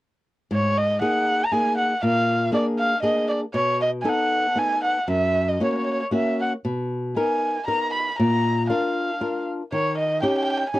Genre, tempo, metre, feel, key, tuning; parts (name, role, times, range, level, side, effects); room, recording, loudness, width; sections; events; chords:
italian folk; 118 BPM; 3/4; straight; G# minor; A4 = 440 Hz
dark erhu; melody; 0.5-10.8 s; C#5 to B5; -22 LUFS; equal
flamenco guitar; accompaniment; 0.5-10.8 s; F#2 to A#4; -24 LUFS; left 1 dB
light reverb; dry, close 1970s-style studio recording; -20 LUFS; side -16 dB against mid
0.5-10.8 A section
0.5 G#sus2; 2.0 A#7; 3.5 B7; 5.1 F#; 6.6 Bmaj7; 8.2 A#; 9.7 D#7